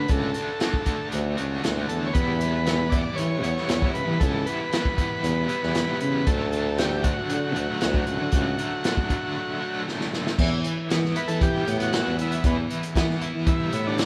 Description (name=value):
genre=psychedelic rock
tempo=117 BPM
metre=4/4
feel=straight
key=E dorian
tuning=A4 = 438 Hz
part: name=combo organ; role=melody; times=0.0-14.1 s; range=B3 to D5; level=-31 LUFS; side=equal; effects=none
part: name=cranked stack guitar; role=riff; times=0.0-14.1 s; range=D3 to F#4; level=-32 LUFS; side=equal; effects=overdrive, tremolo
part: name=clear tuba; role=bass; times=0.0-14.1 s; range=C#2 to E3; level=-29 LUFS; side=equal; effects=none
part: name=crunchy breakbeat drum kit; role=drums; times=0.1-14.1 s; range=crash cymbal, hi-hat, kick drum, snare drum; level=-29 LUFS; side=equal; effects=none
room=moderate stone room reverb, RT60 1.3 s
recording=band playing live in one room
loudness=-25 LUFS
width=mono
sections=0.0-10.4 A section; 10.4-14.1 B section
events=break 9.4-10.4; drum fill 9.9-10.4; transistor combo organ solo 10.4-14.1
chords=0.0 D; 2.2 Em; 6.3 D; 10.4 Em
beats=| 0.09 0.61 1.12 1.64 | 2.15 2.67 3.18 3.69 | 4.21 4.72 5.24 5.75 | 6.27 6.79 7.30 7.81 | 8.33 8.84 9.36 9.87 | 10.38 10.90 11.41 11.93 | 12.44 12.95 13.46 13.98